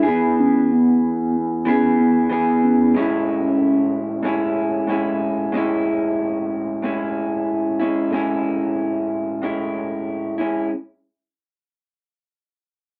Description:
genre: indie pop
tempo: 93 BPM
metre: 4/4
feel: swing 55% on 16ths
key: A major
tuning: A4 = 440 Hz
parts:
  - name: hollow clarinet-like synth lead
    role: melody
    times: 0.0-4.9 s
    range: B3 to E4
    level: -23 LUFS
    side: equal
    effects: lush chorus, cassette tape, tape echo
  - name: electric guitar through a small old amp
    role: accompaniment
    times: 0.0-10.7 s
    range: A2 to G#4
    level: -21 LUFS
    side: equal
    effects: subtle chorus, warbly pitch drift, cassette tape
room: moderate small room ambience, RT60 0.5 s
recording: home recording on cassette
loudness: -20 LUFS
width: mono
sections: 0.0-5.5 A section; 5.5-10.7 B section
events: none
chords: 0.1 E; 3.0 Amaj7

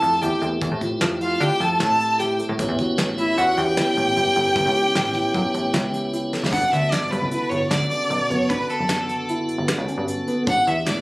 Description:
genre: progressive instrumental, band music in an uneven meter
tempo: 152 BPM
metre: 5/4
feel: straight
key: G lydian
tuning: A4 = 440 Hz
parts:
  - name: clear violin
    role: melody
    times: 0.0-11.0 s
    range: A4 to A5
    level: -22 LUFS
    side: equal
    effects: none
  - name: mellow flugelhorn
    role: second line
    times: 0.0-6.1 s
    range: E4 to A4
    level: -23 LUFS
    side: equal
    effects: none
  - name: tonewheel organ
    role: accompaniment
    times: 0.0-11.0 s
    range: D3 to A4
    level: -28 LUFS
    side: equal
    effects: slow rotary speaker
  - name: felt-muted upright piano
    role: arpeggios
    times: 0.0-11.0 s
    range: C#3 to A4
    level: -29 LUFS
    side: equal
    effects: none
  - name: plucky analog bass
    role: bass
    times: 0.0-11.0 s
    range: F#1 to D3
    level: -26 LUFS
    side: equal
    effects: none
  - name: soft brush drum kit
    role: drums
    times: 0.0-11.0 s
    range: hi-hat, kick drum, snare drum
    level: -27 LUFS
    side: equal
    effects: none
room: moderate studio ambience, RT60 0.5 s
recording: recorded on a phone in the room, club ambience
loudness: -19 LUFS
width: side -22 dB against mid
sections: 0.0-6.5 A section; 6.5-11.0 B section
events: drum fill 6.3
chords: 0.0 Fmaj7; 2.6 A7; 6.5 Gmaj9; 10.5 A9sus4

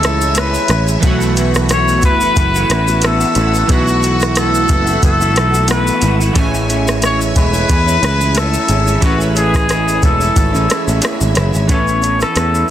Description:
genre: indie pop, bedroom pop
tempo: 90 BPM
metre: 4/4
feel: swing 55% on 16ths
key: A major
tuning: A4 = 440 Hz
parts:
  - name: warm trumpet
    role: melody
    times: 0.0-12.7 s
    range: F#4 to C#5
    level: -17 LUFS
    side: left 2 dB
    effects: wide subtle chorus
  - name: chorused retro synth keys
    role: accompaniment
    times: 0.0-12.7 s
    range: E3 to G#5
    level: -22 LUFS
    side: right 3 dB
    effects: cassette tape
  - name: electric guitar through a small old amp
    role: accompaniment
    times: 0.0-12.7 s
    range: A2 to B4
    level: -20 LUFS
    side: right 1 dB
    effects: lush chorus, vibrato effect
  - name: phased string machine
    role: sustained chords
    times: 0.0-11.7 s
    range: B4 to E6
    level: -25 LUFS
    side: right 1 dB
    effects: ensemble chorus, phaser
  - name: picked electric bass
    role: bass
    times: 0.0-12.6 s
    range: E1 to E2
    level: -16 LUFS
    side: equal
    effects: none
  - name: soft vintage rhythm box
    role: drums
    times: 0.0-12.7 s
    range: hi-hat, kick drum, rim click, shaker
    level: -17 LUFS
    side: equal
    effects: soft clipping on snare
  - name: tube shaker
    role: percussion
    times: 0.0-12.7 s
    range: none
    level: -31 LUFS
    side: right 5 dB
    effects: none
room: light reverb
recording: dense, heavily limited modern master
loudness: -11 LUFS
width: side -11 dB against mid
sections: 0.0-11.7 A section; 11.7-12.7 B section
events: none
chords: 0.0 Amaj7; 1.0 B7sus4; 6.4 Amaj7; 11.7 Aadd9

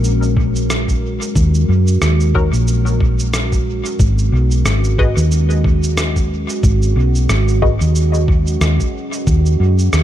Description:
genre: ambient dub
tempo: 91 BPM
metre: 4/4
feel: swing 57% on 16ths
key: Eb minor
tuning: A4 = 440 Hz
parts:
  - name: deep dark ambient pad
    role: sustained chords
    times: 0.0-10.0 s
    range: Gb3 to Bb4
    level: -22 LUFS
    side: right 1 dB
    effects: chorus, built-in reverb
  - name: hollow-body short-scale fingered electric bass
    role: bass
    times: 0.0-10.0 s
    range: Ab1 to Gb2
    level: -14 LUFS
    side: equal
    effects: none
  - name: electronic cabasa and rim click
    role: drums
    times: 0.0-10.0 s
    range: none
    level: -24 LUFS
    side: right 1 dB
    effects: dub echo
  - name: electronic kick drum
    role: drums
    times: 0.4-9.4 s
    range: none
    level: -16 LUFS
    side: equal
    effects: none
  - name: filtered dub chord stab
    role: stabs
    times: 2.3-7.8 s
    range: Db4 to Eb5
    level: -26 LUFS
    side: left 3 dB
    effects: phaser, dub echo
room: little or no reverb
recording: none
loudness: -13 LUFS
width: side -12 dB against mid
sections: 0.0-10.0 A section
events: none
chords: 0.0 Ebm7; 4.0 Abm7; 9.3 Ebm7

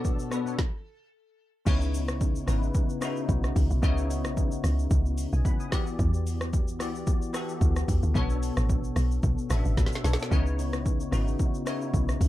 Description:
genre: amapiano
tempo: 111 BPM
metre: 4/4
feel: swing 55% on 16ths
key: unclear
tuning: A4 = 440 Hz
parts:
  - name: metal-body resonator slide guitar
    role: melody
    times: 0.0-1.1 s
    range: A4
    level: -47 LUFS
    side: right 2 dB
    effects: ping-pong delay
  - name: bell-like tine electric piano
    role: accompaniment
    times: 0.0-12.3 s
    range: B2 to D#6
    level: -31 LUFS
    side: left 2 dB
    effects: ensemble chorus
  - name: deep house drum kit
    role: drums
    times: 0.0-12.3 s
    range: crash cymbal, hi-hat, kick drum, rim click, shaker, snare drum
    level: -28 LUFS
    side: equal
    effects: none
  - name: woody log drum bass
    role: bass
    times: 1.7-12.3 s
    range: G#1 to E2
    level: -26 LUFS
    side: equal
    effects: none
room: little or no reverb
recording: dark, warm production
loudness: -24 LUFS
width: side -15 dB against mid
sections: 0.0-1.7 A section; 1.7-12.3 B section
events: stop 0.6-1.7; drop 1.7-12.3; drum fill 9.8-10.3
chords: 0.0 Bm9; 1.7 C#m9; 5.7 Em9; 8.2 Bm9; 10.3 C#m9

